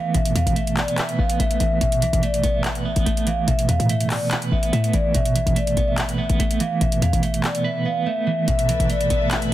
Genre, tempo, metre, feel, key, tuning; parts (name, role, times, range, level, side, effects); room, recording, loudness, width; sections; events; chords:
hip hop, trap; 144 BPM; 4/4; half-time; A4 = 440 Hz
vibraphone with soft mallets; melody; 0.0-9.3 s; D5 to F5; -25 LUFS; left 1 dB; tape echo
clean electric guitar; accompaniment; 0.0-9.5 s; B2 to B4; -23 LUFS; right 4 dB; tremolo
short 808-style bass; bass; 0.1-9.5 s; A1 to A2; -22 LUFS; left 1 dB
trap drum kit; drums; 0.1-9.5 s; handclaps, hi-hat; -28 LUFS; equal
dark studio string section; sustained chords; 8.5-9.5 s; A3 to E5; -29 LUFS; left 3 dB
little or no reverb; dense, heavily limited modern master; -18 LUFS; side -14 dB against mid
0.0-8.5 A section; 8.5-9.5 B section
0.0 Asus2